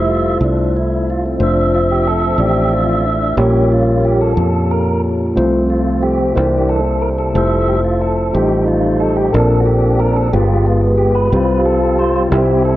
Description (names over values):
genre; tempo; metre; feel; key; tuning
gospel; 60 BPM (dotted quarters); 6/8; straight; F major; A4 = 438 Hz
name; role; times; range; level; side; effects
mellow tine electric piano; accompaniment; 0.0-12.8 s; G2 to D5; -17 LUFS; left 2 dB; medium stereo tremolo
mellow French horn section; sustained chords; 0.0-12.8 s; E3 to E5; -26 LUFS; right 1 dB; none
tonewheel organ; sustained chords; 0.0-12.8 s; E3 to E5; -16 LUFS; right 1 dB; slow rotary speaker, overdrive
fingered electric bass; bass; 0.0-12.8 s; F1 to F2; -18 LUFS; equal; none
room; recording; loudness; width
moderate plate reverb, RT60 3.3 s; worn, warbling old tape, cassette tape, warbly pitch drift; -12 LUFS; side -15 dB against mid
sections
0.0-12.8 A section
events
tonewheel organ solo 0.0-12.8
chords
0.0 Fmaj7; 3.4 Bbm6; 5.4 F/C; 6.4 C7; 7.4 Fmaj7; 8.3 F7/A; 9.3 Bbmaj7; 10.3 G7b9; 11.3 Csus4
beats
0.41 | 1.40 2.39 | 3.38 4.38 | 5.37 6.36 | 7.35 8.35 | 9.34 10.33 | 11.32 12.31